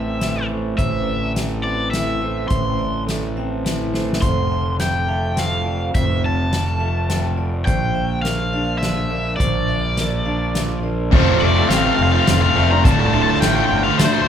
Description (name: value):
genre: post-rock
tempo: 104 BPM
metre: 3/4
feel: straight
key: unclear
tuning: A4 = 440 Hz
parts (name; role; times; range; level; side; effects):
- overdriven electric guitar; melody; 0.0-14.3 s; C5 to C6; -23 LUFS; left 1 dB; none
- electric guitar through a small old amp; arpeggios; 0.0-14.3 s; D2 to F4; -26 LUFS; equal; phaser
- vibraphone with hard mallets; arpeggios; 0.0-14.3 s; C5 to F5; -30 LUFS; right 6 dB; none
- fuzz fingered electric bass; bass; 0.0-14.2 s; D1 to D2; -22 LUFS; equal; overdrive
- soft-mallet drum kit; drums; 0.2-14.1 s; crash cymbal, hi-hat, kick drum, snare drum; -22 LUFS; left 1 dB; none
- distorted electric guitar; riff; 11.1-14.3 s; D2 to F4; -20 LUFS; left 8 dB; distortion
- thick fuzz guitar; riff; 11.1-14.0 s; D2 to F4; -22 LUFS; right 6 dB; distortion
room: light reverb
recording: band playing live in one room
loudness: -16 LUFS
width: side -9 dB against mid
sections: 0.0-11.1 A section; 11.1-14.3 B section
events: drum fill 3.9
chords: 0.0 Am; 4.2 Fmaj7; 7.7 Bbadd9; 11.1 F; 12.8 Dm